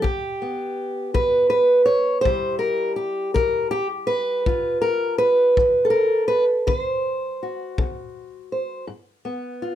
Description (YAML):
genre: acoustic country blues, solo or duo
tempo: 54 BPM (dotted quarters)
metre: 12/8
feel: straight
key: G mixolydian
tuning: A4 = 440 Hz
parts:
  - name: fingerpicked old ladder-braced acoustic guitar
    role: melody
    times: 0.0-9.8 s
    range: G2 to C#5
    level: -19 LUFS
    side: equal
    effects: none
  - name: kick drum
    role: drums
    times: 0.0-8.0 s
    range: none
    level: -26 LUFS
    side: left 3 dB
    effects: none
room: moderate studio reverb, RT60 0.6 s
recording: none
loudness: -19 LUFS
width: side -11 dB against mid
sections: 0.0-8.9 A section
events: none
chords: 0.0 G; 2.3 C; 4.5 G7; 6.7 D7; 8.9 G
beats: | 0.04 1.15 2.25 3.36 | 4.46 5.57 6.68 7.78 | 8.89